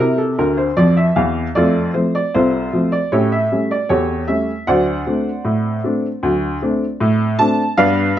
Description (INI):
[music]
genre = ragtime piano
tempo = 77 BPM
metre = 2/4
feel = straight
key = unclear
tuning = A4 = 436 Hz
[part]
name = clear upright piano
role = solo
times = 0.0-8.2 s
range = C2 to A5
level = -15 LUFS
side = equal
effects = none
[sound]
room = moderate club reverb, RT60 0.6 s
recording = dark, warm production, nothing above 7.7 kHz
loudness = -15 LUFS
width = side -11 dB against mid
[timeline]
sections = 0.0-8.2 A section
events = upright piano fill 0.4-1.6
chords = 0.0 C; 1.6 F; 3.1 A7; 4.7 D7